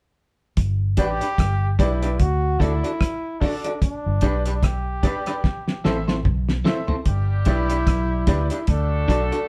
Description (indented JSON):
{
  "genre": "roots reggae",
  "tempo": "74 BPM",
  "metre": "4/4",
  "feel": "swing 57% on 16ths",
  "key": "G major",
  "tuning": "A4 = 440 Hz",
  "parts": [
    { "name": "vintage muted fingered electric bass", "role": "bass", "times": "0.6-9.3 s", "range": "G1 to D2", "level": "-25 LUFS", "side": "equal", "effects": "none" },
    { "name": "cloth-damped thuddy drum kit", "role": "drums", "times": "0.6-9.5 s", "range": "hi-hat, kick drum, rim click, snare drum, toms", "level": "-24 LUFS", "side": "equal", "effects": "none" },
    { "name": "bright trombone", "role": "melody", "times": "1.0-9.5 s", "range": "D4 to G4", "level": "-30 LUFS", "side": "equal", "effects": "none" },
    { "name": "electric guitar at the edge of break-up", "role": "accompaniment", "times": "1.0-9.4 s", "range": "C4 to D5", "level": "-30 LUFS", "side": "equal", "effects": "none" },
    { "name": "clear upright piano", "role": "stabs", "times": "1.0-9.3 s", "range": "D4 to E5", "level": "-33 LUFS", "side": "equal", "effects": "tube saturation" },
    { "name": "warm horn section", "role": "second line", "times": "7.1-9.5 s", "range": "G3 to A4", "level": "-34 LUFS", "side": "equal", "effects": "dub echo" }
  ],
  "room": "moderate studio reverb, RT60 0.8 s",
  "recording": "band playing live in one room",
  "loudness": "-22 LUFS",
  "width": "mono",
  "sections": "0.6-7.1 A section; 7.1-9.5 B section",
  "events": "drum fill 5.4-7.1",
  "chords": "0.6 G; 2.2 D; 3.8 G; 5.4 Am; 7.1 G; 8.7 D",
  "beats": "| 0.57 1.39 2.20 3.01 | 3.82 4.63 5.44 6.25 | 7.06 7.87 8.68"
}